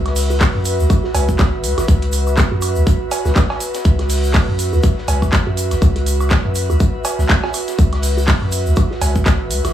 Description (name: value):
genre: minimal techno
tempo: 122 BPM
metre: 4/4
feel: swing 57% on 16ths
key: C# minor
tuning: A4 = 438 Hz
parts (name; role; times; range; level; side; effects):
- punchy sub bass; bass; 0.0-9.7 s; G#1 to F#2; -18 LUFS; equal; tube saturation, sidechain pumping
- airy breathy pad; texture; 0.0-9.7 s; F#4 to E5; -23 LUFS; right 1 dB; chorus, sidechain pumping
- crunchy breakbeat drum kit; drums; 0.1-9.7 s; hi-hat, shaker, snare drum; -32 LUFS; equal; sidechain pumping on hats, high-pass filter on hats, studio reverb, high-pass filter on snare, sidechain pumping on perc, high-pass filter on perc, high-pass filter on room
- minimal click drum kit; drums; 0.1-9.7 s; handclaps, hi-hat; -22 LUFS; equal; studio reverb
- woodblock, bongos and cowbell; percussion; 0.1-9.7 s; none; -26 LUFS; right 6 dB; studio reverb, tape echo
- egg shaker; percussion; 0.2-9.7 s; none; -32 LUFS; left 4 dB; none
- electronic kick drum; drums; 0.4-9.4 s; none; -14 LUFS; equal; studio reverb
room: studio ambience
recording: small room ambience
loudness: -14 LUFS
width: side -11 dB against mid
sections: 0.0-9.7 A section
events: none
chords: 0.0 C#m